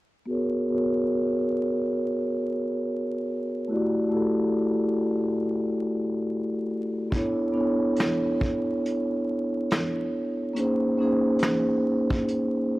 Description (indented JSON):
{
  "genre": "lo-fi hip hop",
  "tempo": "70 BPM",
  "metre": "4/4",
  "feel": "swing 66% on 16ths",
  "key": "unclear",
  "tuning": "A4 = 440 Hz",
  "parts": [
    { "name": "vibraphone with soft mallets", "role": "accompaniment", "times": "0.3-12.8 s", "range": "A3 to D5", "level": "-24 LUFS", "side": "equal", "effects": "cassette tape, low-pass filter" },
    { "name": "vintage brush drum kit", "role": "drums", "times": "7.1-12.5 s", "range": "hi-hat, kick drum, snare drum", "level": "-28 LUFS", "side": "equal", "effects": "none" }
  ],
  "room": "light reverb, studio ambience",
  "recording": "dry, gritty hardware recording, vinyl crackle",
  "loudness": "-23 LUFS",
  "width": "side -18 dB against mid",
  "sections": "0.3-12.8 A section",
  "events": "filter sweep on vibraphone 0.3-12.8; break 12.3-12.8",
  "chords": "0.3 G#m11; 3.7 Em11; 7.1 Bm11; 10.6 A#m11",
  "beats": "| 0.27 1.13 1.98 2.84 | 3.70 4.55 5.41 6.27 | 7.13 7.98 8.84 9.70 | 10.55 11.41 12.27"
}